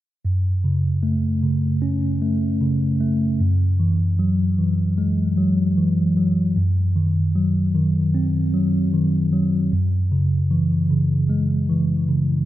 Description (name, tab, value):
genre	pop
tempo	76 BPM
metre	4/4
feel	straight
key	F# minor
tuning	A4 = 441 Hz
part	mellow tine electric piano	accompaniment	0.2-12.5 s	F#2 to C#4	-18 LUFS	equal	medium stereo tremolo
room	moderate lush hall reverb, RT60 3.1 s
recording	dreamy mix soaked in reverb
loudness	-18 LUFS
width	side -14 dB against mid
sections	0.2-12.5 A section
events	none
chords	0.2 F#m; 3.4 Eadd9/F#; 6.6 Cdim/Gb; 9.7 C#m/F#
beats	| 0.25 1.04 1.83 2.62 | 3.40 4.19 4.98 5.77 | 6.56 7.35 8.14 8.93 | 9.72 10.51 11.30 12.09